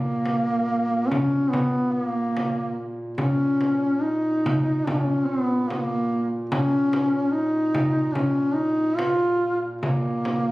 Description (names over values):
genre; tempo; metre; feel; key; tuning
caucasian folk, Caucasian lament; 72 BPM; 4/4; rubato; Bb phrygian; A4 = 441 Hz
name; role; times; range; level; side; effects
mellow duduk; melody; 0.0-10.5 s; Bb3 to F4; -22 LUFS; equal; none
mellow duduk; drone; 0.0-10.5 s; Bb2; -31 LUFS; equal; none
frame drum; percussion; 0.3-10.5 s; none; -27 LUFS; equal; none
room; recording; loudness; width
moderate recital hall reverb, RT60 1.6 s; recorded on a phone in the room, studio reverb; -21 LUFS; side -19 dB against mid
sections
0.0-10.5 A section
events
none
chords
none